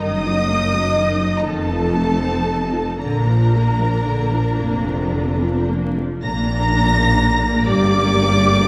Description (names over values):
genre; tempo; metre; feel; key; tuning
classical, slow romantic movement for string orchestra; 35-44 BPM (dotted quarters); 6/8; rubato; Bb major; A4 = 437 Hz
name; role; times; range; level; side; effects
warm symphonic violin section; melody; 0.0-8.7 s; A5 to Bb6; -26 LUFS; equal; none
rich symphonic violin section; second line; 0.0-8.7 s; A4 to Bb5; -26 LUFS; equal; none
rich symphonic viola section; accompaniment; 0.0-8.7 s; D3 to G4; -26 LUFS; equal; none
rich symphonic double bass section; bass; 0.0-8.7 s; F1 to Bb1; -24 LUFS; equal; none
warm symphonic cello section; bass; 0.0-8.7 s; F2 to Bb2; -23 LUFS; equal; none
room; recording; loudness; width
moderate concert hall reverb, RT60 2.3 s; dark, warm production, vinyl crackle; -18 LUFS; mono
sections
0.0-6.2 A section; 6.2-8.7 B section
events
none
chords
0.0 Ebm/Gb; 1.5 F7; 3.0 Bb; 7.7 Gm